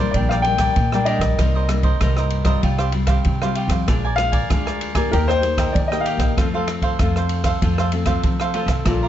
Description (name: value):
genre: samba and choro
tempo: 96 BPM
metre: 4/4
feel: straight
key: unclear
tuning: A4 = 440 Hz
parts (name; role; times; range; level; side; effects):
- warm concert grand piano; melody; 0.0-8.5 s; Bb4 to G5; -23 LUFS; left 3 dB; plate reverb
- cavaquinho; accompaniment; 0.0-9.1 s; D4 to Bb5; -26 LUFS; right 4 dB; none
- nylon-string guitar; accompaniment; 0.0-9.1 s; G2 to G4; -26 LUFS; left 5 dB; none
- upright bass; bass; 0.0-9.1 s; Bb1 to F3; -22 LUFS; equal; none
- open jazz drum kit; drums; 0.1-9.0 s; kick drum, ride cymbal, rim click; -22 LUFS; right 1 dB; none
- breathy mellow jazz flute; second line; 8.9-9.1 s; F4; -23 LUFS; left 2 dB; none
room: light reverb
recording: nothing above 7.8 kHz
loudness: -17 LUFS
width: side -11 dB against mid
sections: 0.0-9.1 A section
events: none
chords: 0.1 Gm/Bb; 1.4 Cm7; 2.6 Fsus2/C; 3.9 Bb7; 5.1 Eb; 6.4 F